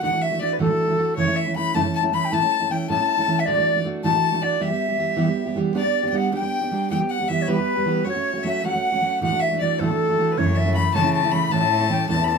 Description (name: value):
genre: celtic folk, Celtic jig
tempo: 104 BPM (dotted quarters)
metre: 6/8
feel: straight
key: unclear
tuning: A4 = 440 Hz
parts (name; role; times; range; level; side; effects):
- wooden flute; melody; 0.0-12.4 s; A4 to B5; -22 LUFS; left 2 dB; none
- rich fiddle; second line; 0.0-12.4 s; A4 to B5; -28 LUFS; left 7 dB; none
- fingerpicked steel-string acoustic guitar; accompaniment; 0.0-12.4 s; D2 to G4; -23 LUFS; right 4 dB; none
- clear cello; bass; 10.4-12.4 s; E2 to C#3; -24 LUFS; left 1 dB; none
room: moderate studio ambience, RT60 0.5 s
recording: minimal, uncompressed stereo recording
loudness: -19 LUFS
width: side -5 dB against mid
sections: 0.0-5.8 A section; 5.8-12.4 A section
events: none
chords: 0.0 Dadd9; 1.2 F#m7; 2.3 A; 3.5 Dadd9; 4.6 Em; 5.8 G; 6.9 Em; 8.1 F#m; 9.2 Dadd9; 10.4 F#m7; 11.5 A